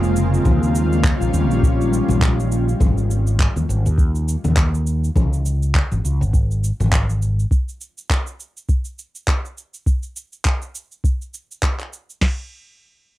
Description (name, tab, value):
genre	sunset chillout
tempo	102 BPM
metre	4/4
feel	swing 57% on 16ths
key	unclear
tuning	A4 = 440 Hz
part	ethereal airy pad	sustained chords	0.0-2.8 s	Db3 to F4	-22 LUFS	equal	ensemble chorus, built-in reverb, cassette tape
part	mellow fretless electric bass	bass	0.0-7.4 s	F1 to Eb2	-19 LUFS	equal	wide subtle chorus
part	cabasa and handclaps	drums	0.0-12.2 s	none	-26 LUFS	equal	none
part	soft vintage rhythm box	drums	0.5-12.4 s	crash cymbal, kick drum, snare drum	-18 LUFS	equal	none
part	congas	percussion	0.5-6.9 s	none	-27 LUFS	left 3 dB	none
room	light reverb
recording	home recording on cassette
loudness	-17 LUFS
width	side -16 dB against mid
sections	0.0-12.2 A section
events	none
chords	0.5 Eb9; 2.8 Ab5; 5.2 Db5; 7.5 N.C.